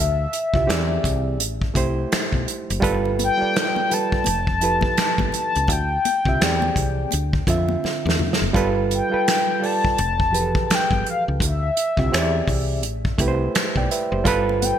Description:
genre	R&B, neo-soul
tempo	84 BPM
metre	4/4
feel	swing 61% on 16ths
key	D dorian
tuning	A4 = 438 Hz
part	mellow horn-like synth lead	melody	0.0-14.8 s	E5 to A5	-23 LUFS	left 3 dB	chorus, ping-pong delay
part	woody fretless electric bass	bass	0.0-14.7 s	F1 to F2	-24 LUFS	left 1 dB	none
part	unplugged drum kit	drums	0.3-14.8 s	finger snaps, hi-hat, kick drum, snare drum, toms	-23 LUFS	equal	gated reverb
part	overdriven reed electric piano	accompaniment	0.5-14.8 s	D3 to G5	-24 LUFS	right 4 dB	none
part	congas	percussion	2.8-8.4, 14.3-14.8 s	none	-34 LUFS	left 8 dB	none
room	light reverb, small room reverb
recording	bright 1980s-style digital production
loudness	-18 LUFS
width	side -9 dB against mid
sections	0.0-8.5 A section; 8.5-14.8 A section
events	drum fill 7.8-8.5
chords	0.0 Dm11; 0.7 E7alt; 1.4 Am7; 2.8 G9; 4.3 Fmaj9#11; 5.7 Dm11; 6.4 E7alt; 7.1 Dm9; 8.5 G9; 10.0 Fmaj9#11; 11.4 Dm11; 12.1 E7alt; 12.8 Am7; 14.3 G9

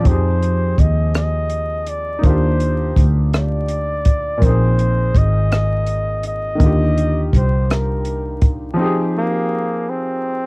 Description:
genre	slow six-eight R&B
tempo	55 BPM (dotted quarters)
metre	6/8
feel	straight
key	F dorian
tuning	A4 = 440 Hz
part	warm flugelhorn	melody	0.0-10.5 s	Bb3 to Eb5	-22 LUFS	equal	cassette tape, plate reverb
part	clear concert grand piano	accompaniment	0.0-10.5 s	Bb2 to Ab4	-23 LUFS	equal	none
part	vintage muted fingered electric bass	bass	0.1-8.7 s	Ab1 to F2	-17 LUFS	equal	none
part	compact cocktail drum kit	drums	0.1-8.6 s	hi-hat, kick drum, rim click	-15 LUFS	equal	none
room	little or no reverb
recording	home recording on cassette, vinyl crackle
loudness	-15 LUFS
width	side -28 dB against mid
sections	0.0-8.8 A section; 8.8-10.5 B section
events	none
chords	0.1 Fm9; 2.2 Ebmaj9; 4.4 Bb9sus4; 6.6 Ebmaj9; 8.8 Fm9

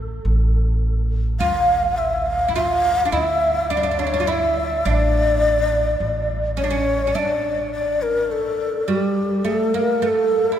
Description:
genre	arabic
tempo	104 BPM (eighths)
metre	10/8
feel	straight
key	D maqam nahawand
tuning	A4 = 443 Hz
part	upright bass	bass	0.0-7.1 s	A1 to D2	-23 LUFS	equal	none
part	breathy mellow low ney	melody	1.4-10.6 s	G4 to F5	-20 LUFS	left 2 dB	none
part	oud	second line	1.4-10.6 s	G3 to F4	-24 LUFS	right 4 dB	none
room	wet cathedral reverb, RT60 6.5 s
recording	recorded in a church or concert hall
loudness	-18 LUFS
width	side -10 dB against mid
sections	0.0-10.6 A section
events	none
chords	none

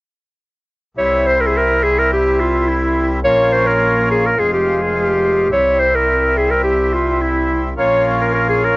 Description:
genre	klezmer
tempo	106 BPM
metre	2/4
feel	straight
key	C phrygian dominant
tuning	A4 = 439 Hz
part	clear clarinet	melody	1.0-8.8 s	E4 to Db5	-14 LUFS	equal	cassette tape
part	accordion	accompaniment	1.0-8.8 s	G3 to F4	-19 LUFS	equal	none
part	clear double bass	bass	1.0-8.8 s	F1 to C2	-22 LUFS	equal	none
room	light reverb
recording	home recording on cassette, nothing above 7.7 kHz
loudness	-13 LUFS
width	side -22 dB against mid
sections	1.0-8.8 A section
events	none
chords	1.0 C; 3.2 Bbm; 4.4 Fm; 5.5 C; 7.8 Bbm

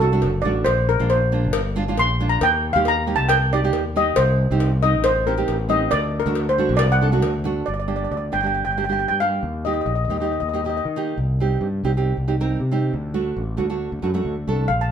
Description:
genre	calypso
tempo	137 BPM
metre	4/4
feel	straight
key	unclear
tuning	A4 = 440 Hz
part	steel pan	melody	0.0-10.8, 14.7-14.9 s	A4 to C6	-21 LUFS	left 1 dB	none
part	nylon-string guitar	accompaniment	0.0-14.7 s	A3 to Bb4	-25 LUFS	right 6 dB	none
part	growling fingered electric bass	bass	0.0-14.9 s	F#1 to Eb3	-22 LUFS	equal	overdrive
part	cowbell	percussion	0.2-7.3 s	none	-29 LUFS	left 6 dB	none
room	moderate stone room reverb, RT60 1.1 s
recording	band playing live in one room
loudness	-18 LUFS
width	side -8 dB against mid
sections	0.0-7.7 A section; 7.7-14.9 B section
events	steel pan solo 0.0-7.7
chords	0.0 D; 0.7 Bbadd9; 2.4 Eb; 4.2 Cm; 5.9 D; 7.7 Gm; 9.4 Eb; 11.2 Cm; 12.9 D

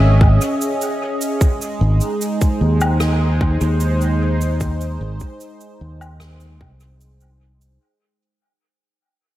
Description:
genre	ambient dub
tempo	75 BPM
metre	4/4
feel	straight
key	unclear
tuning	A4 = 440 Hz
part	warm analog pad	sustained chords	0.0-7.8 s	G#3 to E5	-22 LUFS	right 1 dB	chorus
part	fingered electric bass	bass	0.0-7.8 s	G#1 to D#2	-16 LUFS	equal	none
part	electronic kick drum	drums	0.2-6.8 s	none	-16 LUFS	equal	studio reverb
part	cabasa, woodblock and rim click	drums	0.4-7.8 s	none	-27 LUFS	equal	studio reverb, dub echo
room	small room ambience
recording	echo-heavy mix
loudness	-15 LUFS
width	side -14 dB against mid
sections	0.0-7.8 A section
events	fade-out 0.0-7.8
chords	0.0 C#m; 1.4 G#

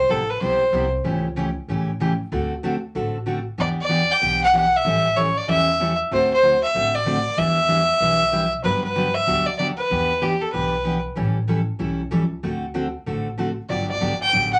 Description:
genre	country, western swing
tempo	190 BPM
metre	4/4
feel	swing 64% on 8ths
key	unclear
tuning	A4 = 441 Hz
part	clear fiddle	melody	0.0-0.9, 3.6-11.0, 13.7-14.6 s	G4 to G5	-21 LUFS	equal	none
part	upright bass	bass	0.0-14.6 s	G1 to A2	-32 LUFS	equal	none
part	picked steel-string acoustic guitar	accompaniment	0.1-14.5 s	C3 to B4	-27 LUFS	equal	none
room	wet small room reverb, RT60 0.5 s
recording	nothing above 10.9 kHz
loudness	-21 LUFS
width	mono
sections	0.0-14.6 A section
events	none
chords	0.0 Cmaj7; 1.0 A7/C#; 2.3 D7; 3.6 Em7; 4.8 A7; 6.1 D7; 7.4 Em7; 8.6 Gmaj7; 9.9 Em7; 11.2 A7; 12.4 D7; 13.7 Gmaj9

